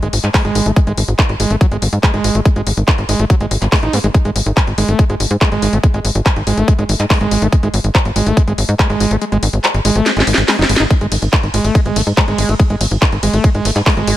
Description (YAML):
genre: psychedelic trance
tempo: 142 BPM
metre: 4/4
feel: straight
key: unclear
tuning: A4 = 439 Hz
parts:
  - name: overdriven acid bass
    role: riff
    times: 0.0-14.2 s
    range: F#3 to D#4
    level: -19 LUFS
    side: right 1 dB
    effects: distortion, auto-pan, sidechain pumping, dub echo
  - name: tight sequencer bass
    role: bass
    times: 0.0-14.1 s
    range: F#1 to G#2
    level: -16 LUFS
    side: equal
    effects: none
  - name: drum and bass drum kit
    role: drums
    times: 0.0-14.2 s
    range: handclaps, hi-hat, ride cymbal, snare drum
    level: -18 LUFS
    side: left 1 dB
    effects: none
  - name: electronic kick drum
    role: drums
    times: 0.3-13.9 s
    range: none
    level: -13 LUFS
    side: equal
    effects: none
room: digital ambience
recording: none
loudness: -12 LUFS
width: side -14 dB against mid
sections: 0.0-14.2 A section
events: kick drops out 9.2-10.9; drum fill 10.1-10.9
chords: 0.0 G#5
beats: 0.34 | 0.76 1.19 1.61 2.03 | 2.45 2.88 3.30 3.72 | 4.14 4.57 4.99 5.41 | 5.83 6.26 6.68 7.10 | 7.53 7.95 8.37 8.79 | 9.21 9.64 10.06 10.48 | 10.90 11.33 11.75 12.17 | 12.60 13.02 13.44 13.86